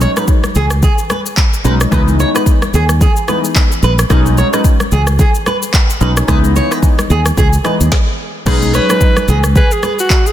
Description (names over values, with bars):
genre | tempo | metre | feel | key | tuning
afrobeats | 110 BPM | 4/4 | swing 58% on 16ths | B major | A4 = 441 Hz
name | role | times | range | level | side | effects
glassy digital keys | accompaniment | 0.0-9.1 s | E3 to D#4 | -18 LUFS | left 2 dB | chorus
flamenco guitar | riff | 0.0-9.9 s | G#4 to C#5 | -19 LUFS | right 3 dB | ping-pong delay
modern bright fingered electric bass | bass | 0.0-9.6 s | A#1 to D#2 | -12 LUFS | equal | none
afro-pop drum kit | drums | 0.0-10.3 s | crash cymbal, handclaps, kick drum, rim click, shaker, snare drum | -13 LUFS | equal | soft clipping on snare
congas | percussion | 0.0-10.0 s | none | -25 LUFS | left 2 dB | none
breathy alto saxophone | melody | 8.5-10.3 s | F#4 to B4 | -16 LUFS | right 1 dB | ping-pong delay
room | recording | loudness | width
light reverb | dense, heavily limited modern master | -10 LUFS | side -12 dB against mid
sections
0.0-8.5 A section; 8.5-10.3 B section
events
stop 7.9-8.5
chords
0.0 B6; 1.9 C#m9; 4.1 B6; 6.3 C#m9; 8.5 B6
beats
0.28 0.83 1.38 | 1.92 2.47 3.01 3.56 | 4.10 4.65 5.19 5.74 | 6.28 6.83 7.38 7.92 | 8.47 9.01 9.56 10.10